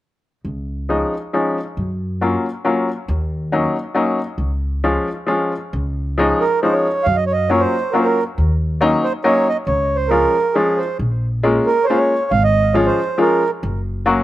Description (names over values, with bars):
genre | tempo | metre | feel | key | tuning
musette waltz | 137 BPM | 3/4 | swing 53% on 8ths | Db major | A4 = 440 Hz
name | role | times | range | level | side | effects
upright bass | bass | 0.4-14.2 s | Gb1 to Gb2 | -20 LUFS | equal | none
bright upright piano | accompaniment | 0.9-14.2 s | F3 to Gb4 | -18 LUFS | left 2 dB | slapback echo
mellow accordion | melody | 6.4-13.5 s | Ab4 to F5 | -17 LUFS | right 3 dB | slapback echo
room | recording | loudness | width
little or no reverb | recorded outdoors, with no room sound | -16 LUFS | side -14 dB against mid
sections
0.4-5.7 A section; 5.7-14.2 B section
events
none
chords
0.4 Dbadd9; 1.8 Gbmaj7; 3.1 Ebm7; 4.4 Db; 5.7 Dbadd9; 7.1 Gbmaj7; 8.4 Ebm7; 9.7 Db; 11.0 Bbm7; 12.3 Db/Ab; 13.6 Gb